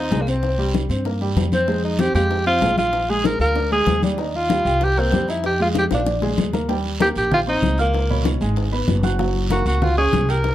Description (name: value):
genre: Afro-Cuban jazz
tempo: 192 BPM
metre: 4/4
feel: straight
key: Eb major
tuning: A4 = 439 Hz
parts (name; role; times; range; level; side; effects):
- warm tenor saxophone; melody; 0.0-10.5 s; Bb3 to Bb4; -21 LUFS; equal; plate reverb
- warm baby grand piano; accompaniment; 0.0-10.5 s; Cb3 to G6; -24 LUFS; right 1 dB; none
- upright bass; bass; 0.0-10.5 s; Gb1 to G2; -22 LUFS; equal; none
- bongos; percussion; 0.1-10.5 s; none; -29 LUFS; left 6 dB; none
- congas; percussion; 0.1-10.5 s; none; -25 LUFS; left 3 dB; none
- guiro; percussion; 0.1-10.5 s; none; -35 LUFS; right 5 dB; none
room: light reverb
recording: none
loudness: -17 LUFS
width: side -13 dB against mid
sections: 0.0-6.7 A section; 6.7-10.5 B section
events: drum fill 5.9-6.7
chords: 0.4 C5; 1.7 Fm; 2.9 Bb7; 4.2 Eb; 4.8 C5; 5.4 Fm7; 6.1 Bb7; 6.7 Eb6; 7.9 Db6; 9.2 Gbadd9